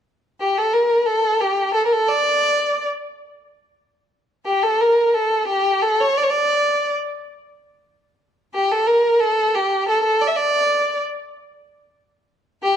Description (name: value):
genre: arabic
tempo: 59 BPM (dotted quarters)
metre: 6/8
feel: straight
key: A maqam hijaz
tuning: A4 = 440 Hz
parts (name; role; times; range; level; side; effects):
- rich violin; melody; 0.4-12.8 s; G4 to E5; -16 LUFS; equal; none
room: moderate recital hall reverb, RT60 1.6 s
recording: dark, warm production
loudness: -16 LUFS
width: side -9 dB against mid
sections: 0.0-12.8 A section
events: none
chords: none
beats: 0.04 | 1.06 2.08 | 3.10 4.11 | 5.13 6.15 | 7.17 8.19 | 9.20 10.22 | 11.23 12.25